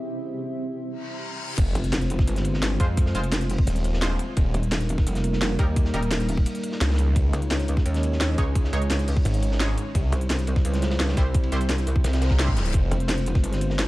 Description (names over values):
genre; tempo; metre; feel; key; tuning
dark technical drum and bass; 172 BPM; 4/4; straight; F minor; A4 = 441 Hz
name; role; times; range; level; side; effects
dark analog pad; sustained chords; 0.0-13.9 s; G3 to E5; -30 LUFS; right 1 dB; chorus, sidechain pumping
reverse cymbal and impact; sound effects; 1.0-3.0, 12.2-12.7 s; none; -36 LUFS; left 1 dB; none
snarling distorted saw bass; bass; 1.6-4.5, 6.8-12.9 s; Eb1 to Db2; -23 LUFS; equal; distortion, tube saturation, sidechain pumping
crunchy breakbeat drum kit; drums; 1.6-13.9 s; hi-hat, ride cymbal, snare drum; -38 LUFS; equal; high-pass filter on cymbals, high-pass filter on hats, high-pass filter on snare, high-pass filter on room
drum and bass drum kit; drums; 1.6-13.9 s; crash cymbal, hi-hat, snare drum; -29 LUFS; equal; none
electronic kick drum; drums; 1.6-13.4 s; none; -22 LUFS; equal; none
metallic wobble bass; bass; 1.8-13.9 s; Eb1 to F2; -24 LUFS; equal; chorus
band-passed chord stab; stabs; 2.8-6.0, 8.4-12.5 s; G3 to Db5; -35 LUFS; right 1 dB; chorus, tape echo
room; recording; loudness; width
digital ambience; dark, warm production; -21 LUFS; side -18 dB against mid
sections
0.0-1.6 A section; 1.6-13.9 B section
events
reverse cymbal 1.0-1.6, 12.2-12.7; drop 1.6-13.9; impact 1.6-3.0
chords
0.0 C; 1.6 Fm; 4.4 Eb; 7.2 Dbsus2; 10.0 C; 12.7 Fm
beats
| 0.18 0.53 0.88 1.23 | 1.58 1.93 2.28 2.62 | 2.97 3.32 3.67 4.02 | 4.37 4.72 5.07 5.42 | 5.76 6.11 6.46 6.81 | 7.16 7.51 7.86 8.21 | 8.55 8.90 9.25 9.60 | 9.95 10.30 10.65 11.00 | 11.35 11.70 12.04 12.39 | 12.74 13.09 13.44 13.79